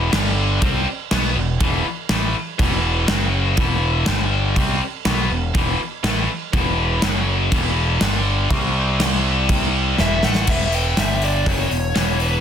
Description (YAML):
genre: hard rock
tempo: 122 BPM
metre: 4/4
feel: straight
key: E minor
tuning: A4 = 440 Hz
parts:
  - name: tight distorted guitar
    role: riff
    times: 0.0-12.4 s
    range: E2 to C4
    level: -21 LUFS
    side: left 2 dB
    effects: distortion
  - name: growling picked electric bass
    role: bass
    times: 0.0-12.4 s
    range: E1 to C2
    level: -21 LUFS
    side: equal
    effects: overdrive
  - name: gated 80s drum kit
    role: drums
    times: 0.1-12.3 s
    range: crash cymbal, hi-hat, kick drum, snare drum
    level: -22 LUFS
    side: equal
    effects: none
  - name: smooth overdriven lead guitar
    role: melody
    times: 10.0-12.4 s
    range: B4 to G5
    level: -23 LUFS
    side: left 1 dB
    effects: plate reverb
room: light reverb, studio reverb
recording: dense, heavily limited modern master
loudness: -17 LUFS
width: side -8 dB against mid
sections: 0.0-10.5 A section; 10.5-12.4 B section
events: drum fill 10.0-10.5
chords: 0.1 G5; 0.6 E5; 3.1 F#5; 3.6 E5; 4.1 G5; 4.6 E5; 7.0 F#5; 7.5 E5; 8.0 G5; 8.5 C5; 10.0 E5; 10.5 Em; 11.0 G5; 11.5 E5